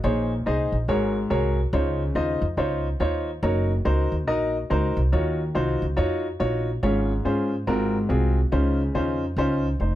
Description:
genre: uptempo gospel.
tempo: 141 BPM.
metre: 4/4.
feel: swing 62% on 8ths.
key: Db major.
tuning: A4 = 440 Hz.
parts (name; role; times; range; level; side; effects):
clear upright piano; accompaniment; 0.0-10.0 s; Ab2 to Eb5; -24 LUFS; left 1 dB; none.
upright bass; bass; 0.0-10.0 s; F1 to Ab2; -24 LUFS; equal; none.
room: light reverb.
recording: none.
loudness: -21 LUFS.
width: side -13 dB against mid.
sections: 0.0-10.0 A section.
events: none.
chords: 0.0 Bbm11; 0.9 Ab9sus4; 1.7 Dbmaj9; 3.4 Gb6; 5.1 Ebm9; 6.8 Db/Ab; 7.7 Ab13; 8.5 Dbmaj9.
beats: | 0.03 0.46 0.88 1.31 | 1.73 2.16 2.58 3.00 | 3.43 3.85 4.28 4.70 | 5.13 5.55 5.98 6.40 | 6.83 7.25 7.67 8.10 | 8.52 8.95 9.37 9.80.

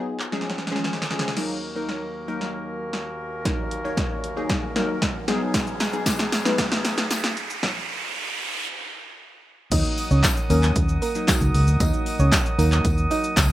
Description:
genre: dance-pop.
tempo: 115 BPM.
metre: 4/4.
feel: straight.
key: Eb minor.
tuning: A4 = 441 Hz.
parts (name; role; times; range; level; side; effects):
glassy wavetable pluck; accompaniment; 0.0-13.5 s; F3 to Db5; -29 LUFS; left 2 dB; chorus.
punchy analog drum machine; drums; 0.2-13.5 s; crash cymbal, handclaps, hi-hat, kick drum, shaker, snare drum; -23 LUFS; equal; none.
warm woodwind section; sustained chords; 1.4-13.5 s; Eb2 to Eb6; -31 LUFS; right 1 dB; sidechain pumping.
riser; sound effects; 2.8-8.7 s; none; -32 LUFS; right 3 dB; none.
tambourine; percussion; 5.5-13.5 s; none; -36 LUFS; left 5 dB; none.
soft round pluck; melody; 9.7-13.3 s; Gb3 to Eb5; -28 LUFS; right 2 dB; chorus, sidechain pumping, tape echo.
vintage muted fingered electric bass; bass; 9.7-13.5 s; Db2 to Eb2; -19 LUFS; equal; sidechain pumping.
room: light reverb.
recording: rough home demo mix, high-pass filter.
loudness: -21 LUFS.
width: side -15 dB against mid.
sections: 0.0-1.4 A section; 1.4-9.7 B section; 9.7-13.5 C section.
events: drum fill 0.3-1.4, 1.4-7.6; build-up 1.4-9.7; filter sweep 1.4-9.7; riser 2.8-9.7; stop 7.6-9.7; drop 9.7-13.5.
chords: 0.3 Db; 1.4 Ebm; 5.3 B6; 7.6 N.C.; 9.7 Ebm.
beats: 0.33 0.85 | 1.37 1.89 2.41 2.93 | 3.46 3.98 4.50 5.02 | 5.54 6.06 6.59 7.11 | 7.63 8.15 8.67 9.20 | 9.72 10.24 10.76 11.28 | 11.80 12.32 12.85 13.37.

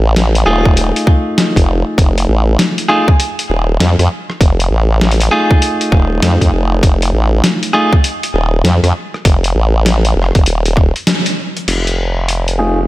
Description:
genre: glitch hop.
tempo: 99 BPM.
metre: 4/4.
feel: swing 63% on 16ths.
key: unclear.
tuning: A4 = 440 Hz.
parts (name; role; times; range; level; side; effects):
formant-sweep wobble bass; bass; 0.0-12.9 s; Eb1 to F2; -12 LUFS; equal; chorus.
boom bap sampler-style drum kit; drums; 0.2-12.6 s; crash cymbal, hi-hat, rim click, snare drum; -17 LUFS; left 1 dB; studio reverb.
clean electric guitar; stabs; 0.5-7.9, 12.6-12.8 s; A3 to G#4; -16 LUFS; equal; vintage 12-bit sampler grit, sidechain pumping, low-pass filter, diffuse ambient delay.
electronic kick drum; drums; 0.7-10.9 s; none; -10 LUFS; equal; studio reverb.
room: light reverb.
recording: none.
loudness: -10 LUFS.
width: side -17 dB against mid.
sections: 0.0-11.7 A section; 11.7-12.9 B section.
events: break 11.1-11.7; band accent 11.1-11.4.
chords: 0.0 F7#9.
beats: 0.16 0.77 1.38 | 1.98 2.59 3.19 3.80 | 4.41 5.01 5.62 6.22 | 6.83 7.44 8.04 8.65 | 9.25 9.86 10.47 11.07 | 11.68 12.28.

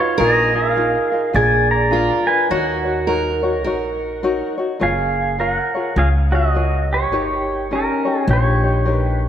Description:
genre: Hawaiian.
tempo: 104 BPM.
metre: 4/4.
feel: swing 62% on 8ths.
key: Eb minor, F# major from 4.8 s.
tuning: A4 = 439 Hz.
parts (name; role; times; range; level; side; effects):
pedal steel guitar; melody; 0.0-9.2 s; C#4 to Bb5; -19 LUFS; right 1 dB; digital delay.
picked steel-string acoustic guitar; second line; 0.0-4.5 s; F4 to Cb5; -21 LUFS; right 4 dB; none.
tenor ukulele; accompaniment; 0.0-9.3 s; D4 to Db5; -23 LUFS; left 4 dB; none.
upright bass; bass; 0.2-9.3 s; F#1 to Eb2; -20 LUFS; equal; none.
room: moderate scoring stage reverb, RT60 1.6 s.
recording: none.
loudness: -16 LUFS.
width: side -9 dB against mid.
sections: 0.0-4.8 A section; 4.8-9.3 B section.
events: none.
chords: 0.2 Bb7sus4; 1.3 Bb7; 2.5 Ebm7; 4.8 F#maj9; 7.1 D#7/G.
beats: | 0.18 0.76 1.34 1.92 | 2.49 3.07 3.65 4.23 | 4.80 5.38 5.96 6.54 | 7.11 7.69 8.27 8.85.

